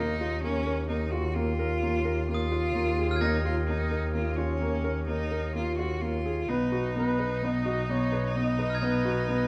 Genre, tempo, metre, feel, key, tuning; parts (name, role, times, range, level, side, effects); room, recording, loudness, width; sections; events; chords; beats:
contemporary instrumental, chamber music in an uneven meter; 129 BPM; 7/4; straight; A4 = 440 Hz
rich cello; second line; 0.0-9.5 s; Db4 to Gb4; -34 LUFS; equal
felt-muted upright piano; arpeggios; 0.0-9.4 s; Bb3 to Cb5; -34 LUFS; equal
muted double bass; bass; 0.0-9.5 s; Cb2 to Eb2; -33 LUFS; equal
glockenspiel with hard plastic mallets; texture; 2.3-9.5 s; Eb6 to Bb6; -40 LUFS; equal
breathy flugelhorn; melody; 6.5-9.5 s; Cb5 to Eb5; -34 LUFS; equal
moderate recital hall reverb, RT60 1.5 s; recorded in a church or concert hall; -28 LUFS; mono
0.0-9.5 A section
0.0 Ebsus2; 6.5 Cb
0.44 0.90 1.36 1.82 2.29 2.75 | 3.21 3.68 4.14 4.61 5.08 5.55 6.02 | 6.49 6.96 7.42 7.89 8.35 8.82 9.28